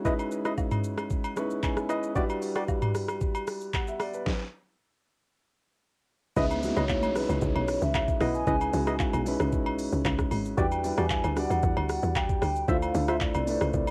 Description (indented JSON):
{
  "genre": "amapiano",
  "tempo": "114 BPM",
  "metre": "4/4",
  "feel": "straight",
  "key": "C# minor",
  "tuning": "A4 = 441 Hz",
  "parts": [
    { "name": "dark grand piano", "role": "accompaniment", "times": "0.0-13.9 s", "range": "G3 to C#6", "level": "-34 LUFS", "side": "equal", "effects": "cassette tape" },
    { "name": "percussive organ stab", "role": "stabs", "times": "0.0-2.6, 6.4-13.2 s", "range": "E4 to E5", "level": "-34 LUFS", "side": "equal", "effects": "chorus, cassette tape, tape echo" },
    { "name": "smooth R&B drum kit", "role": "drums", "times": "0.1-13.9 s", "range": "handclaps, hi-hat, kick drum, rim click, shaker, snare drum, toms", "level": "-33 LUFS", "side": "equal", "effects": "cassette tape" },
    { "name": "agogo bells and woodblock", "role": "percussion", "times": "0.2-13.9 s", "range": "none", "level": "-40 LUFS", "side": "equal", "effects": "none" },
    { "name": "hollow clarinet-like synth lead", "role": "melody", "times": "6.4-13.9 s", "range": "B4 to G#5", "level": "-34 LUFS", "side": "equal", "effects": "chorus, cassette tape, tape echo" },
    { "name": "tight log drum bass", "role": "bass", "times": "6.4-13.9 s", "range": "G#1 to E2", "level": "-33 LUFS", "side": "equal", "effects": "none" },
    { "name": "downlifter", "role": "sound effects", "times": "6.4-10.6 s", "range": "none", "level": "-41 LUFS", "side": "equal", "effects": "none" }
  ],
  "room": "light reverb",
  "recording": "home recording on cassette",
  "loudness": "-28 LUFS",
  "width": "mono",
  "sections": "0.0-6.4 A section; 6.4-13.9 B section",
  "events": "grand piano fill 1.1-2.2; stop 4.3-6.4; drop 6.4-13.9",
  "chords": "0.0 C#m9; 2.2 Em9; 4.3 N.C.; 6.4 C#m9; 10.6 Em9; 12.7 Dm9"
}